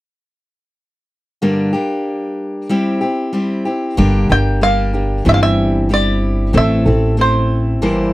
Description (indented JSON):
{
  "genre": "folk",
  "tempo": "94 BPM",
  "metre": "4/4",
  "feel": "straight",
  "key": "G dorian",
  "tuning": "A4 = 443 Hz",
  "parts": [
    { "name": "picked steel-string acoustic guitar", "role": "accompaniment", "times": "1.4-8.1 s", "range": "G2 to C5", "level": "-16 LUFS", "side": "left 1 dB", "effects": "none" },
    { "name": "upright bass", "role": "bass", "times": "4.0-8.1 s", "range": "G1 to A1", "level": "-16 LUFS", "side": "equal", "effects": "none" },
    { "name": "bluegrass banjo", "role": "melody", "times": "4.3-8.1 s", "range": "C5 to G5", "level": "-18 LUFS", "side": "right 1 dB", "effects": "none" }
  ],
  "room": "light reverb",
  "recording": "dry, close 1970s-style studio recording",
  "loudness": "-13 LUFS",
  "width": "side -17 dB against mid",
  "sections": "1.4-4.0 A section; 4.0-8.1 B section",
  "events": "none",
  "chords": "1.4 Gm; 2.7 C/G; 4.0 Gm; 5.3 C/G; 6.5 Am"
}